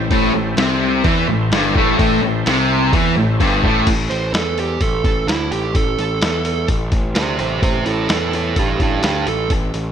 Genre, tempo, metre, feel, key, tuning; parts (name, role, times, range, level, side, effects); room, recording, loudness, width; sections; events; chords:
blues rock power trio and southern rock; 128 BPM; 4/4; straight; A minor; A4 = 440 Hz
overdriven tonewheel organ; sustained chords; 0.0-3.8 s; E4 to C5; -27 LUFS; right 3 dB; chorus vibrato, slow rotary speaker
fuzz guitar; riff; 0.0-3.9 s; G2 to E3; -16 LUFS; left 1 dB; distortion, slapback echo
fuzz picked electric bass; bass; 0.0-9.9 s; G1 to E2; -22 LUFS; equal; overdrive
lo-fi sampler-style drum kit; drums; 0.1-9.8 s; crash cymbal, hi-hat, kick drum, snare drum; -20 LUFS; equal
dark smooth lead guitar; second line; 4.1-9.5 s; D4 to C5; -20 LUFS; right 5 dB; overdrive, slapback echo
moderate lush hall reverb, RT60 2.0 s; big arena sound; -15 LUFS; side -8 dB against mid
0.0-3.9 A section; 3.9-9.9 B section
kick and snare drop out 2.9-3.9; lead electric guitar solo 3.9-9.9
0.0 Am; 3.9 A5